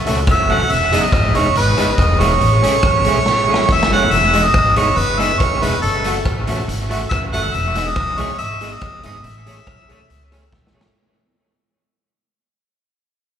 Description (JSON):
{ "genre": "ska", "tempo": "140 BPM", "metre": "4/4", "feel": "straight", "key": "E major", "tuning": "A4 = 437 Hz", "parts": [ { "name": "upright bass", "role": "bass", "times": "0.0-10.9 s", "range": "E1 to C#2", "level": "-20 LUFS", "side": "equal", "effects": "none" }, { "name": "electric guitar at the edge of break-up", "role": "accompaniment", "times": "0.1-10.9 s", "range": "E3 to G#4", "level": "-23 LUFS", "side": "right 3 dB", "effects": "analog chorus, tape echo, slapback echo" }, { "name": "clear upright piano", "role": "stabs", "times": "0.1-10.9 s", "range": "E4 to E5", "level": "-26 LUFS", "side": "left 4 dB", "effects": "tape echo, slapback echo" }, { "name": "raw garage drum kit", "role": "drums", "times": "0.1-10.9 s", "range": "hi-hat, kick drum, rim click, snare drum", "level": "-20 LUFS", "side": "equal", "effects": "tape echo" }, { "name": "clear harmonica", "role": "melody", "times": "0.3-10.5 s", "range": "A4 to F#5", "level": "-17 LUFS", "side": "right 2 dB", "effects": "tape echo, slapback echo" } ], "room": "light reverb, small room ambience", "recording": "live gig heard through the venue's PA, club reverb", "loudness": "-13 LUFS", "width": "side -8 dB against mid", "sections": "0.0-4.1 A section; 4.1-10.9 B section", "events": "drum fill 3.3-4.1, 10.5-10.9; fade-out 4.1-10.9", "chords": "0.0 F#m7; 0.7 Emaj7; 2.4 Amaj7; 4.1 Emaj7; 5.8 F#m7; 7.5 Emaj7; 9.2 Amaj7", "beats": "0.27 | 0.70 1.13 1.55 1.98 | 2.41 2.84 3.26 3.69 | 4.12 4.54 4.97 5.40 | 5.83 6.25 6.68 7.11 | 7.54 7.96 8.39 8.82 | 9.24 9.67 10.10 10.52" }